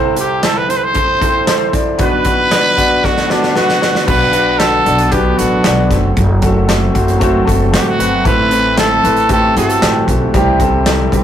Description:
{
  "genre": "piano-driven pop",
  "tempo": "115 BPM",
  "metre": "4/4",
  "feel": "straight",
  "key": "unclear",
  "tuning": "A4 = 442 Hz",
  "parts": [
    { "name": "clear grand piano", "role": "accompaniment", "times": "0.0-11.2 s", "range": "B1 to D5", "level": "-16 LUFS", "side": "left 1 dB", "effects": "none" },
    { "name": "growling trumpet", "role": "melody", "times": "0.2-10.1 s", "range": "D4 to C5", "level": "-14 LUFS", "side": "right 1 dB", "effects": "none" },
    { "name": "modern studio drum kit", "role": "drums", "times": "0.2-11.2 s", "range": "crash cymbal, handclaps, hi-hat, kick drum, snare drum", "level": "-17 LUFS", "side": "equal", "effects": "none" },
    { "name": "airy breathy pad", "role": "sustained chords", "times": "4.8-11.2 s", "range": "E3 to D4", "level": "-20 LUFS", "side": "right 1 dB", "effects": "chorus" },
    { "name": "upright bass", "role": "bass", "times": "4.1-11.2 s", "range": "F#1 to C2", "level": "-17 LUFS", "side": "equal", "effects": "none" }
  ],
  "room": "wet small room reverb, RT60 0.5 s",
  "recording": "rough rehearsal-room recording, warm saturation",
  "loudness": "-10 LUFS",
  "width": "side -10 dB against mid",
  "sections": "0.0-4.1 A section; 4.1-11.2 B section",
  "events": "drum fill 3.0-4.1",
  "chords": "0.0 Am/C; 2.0 Bm; 5.9 F#dim; 8.3 Am; 10.3 C"
}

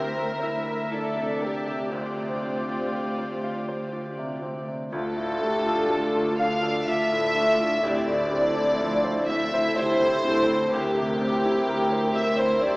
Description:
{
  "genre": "cinematic, emotional film score for orchestra",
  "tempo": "62 BPM",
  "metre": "3/4",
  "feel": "rubato",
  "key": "D minor",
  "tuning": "A4 = 440 Hz",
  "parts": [
    { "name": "clear French horn", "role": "melody", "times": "0.0-3.9 s", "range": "C4 to E4", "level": "-36 LUFS", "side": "equal", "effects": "none" },
    { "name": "dark studio violin section", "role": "melody", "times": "0.0-12.8 s", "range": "A4 to E5", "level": "-37 LUFS", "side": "left 1 dB", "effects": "none" },
    { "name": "warm studio violin section", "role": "second line", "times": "0.0-12.8 s", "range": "F4 to F5", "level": "-27 LUFS", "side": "equal", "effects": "none" },
    { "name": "bright baby grand piano", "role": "accompaniment", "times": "0.0-12.8 s", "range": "D2 to F5", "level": "-30 LUFS", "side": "equal", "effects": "none" },
    { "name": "rich studio viola section", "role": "accompaniment", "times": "0.0-12.8 s", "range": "C4 to E5", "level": "-31 LUFS", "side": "equal", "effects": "none" },
    { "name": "dark studio double bass section", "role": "bass", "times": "0.0-12.8 s", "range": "D2", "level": "-38 LUFS", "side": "right 1 dB", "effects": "none" },
    { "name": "warm studio cello section", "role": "bass", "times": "0.0-12.8 s", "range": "D2", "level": "-33 LUFS", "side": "equal", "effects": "none" },
    { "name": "hollow large flute ensemble", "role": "second line", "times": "4.9-12.8 s", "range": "G4 to F5", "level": "-29 LUFS", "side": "left 1 dB", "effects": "none" },
    { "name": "clear French horn section", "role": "sustained chords", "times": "4.9-12.8 s", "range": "F3 to Bb4", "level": "-30 LUFS", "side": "left 1 dB", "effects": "none" }
  ],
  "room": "wet scoring stage reverb, RT60 1.9 s",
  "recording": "heard from further back in the room, small speaker sound",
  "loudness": "-22 LUFS",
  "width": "side -23 dB against mid",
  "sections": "0.0-4.9 A section; 4.9-12.8 A section",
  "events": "none",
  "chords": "0.0 C7/D; 1.9 Fsus2/D; 4.9 Dm; 7.8 Am/D; 10.7 C7/D"
}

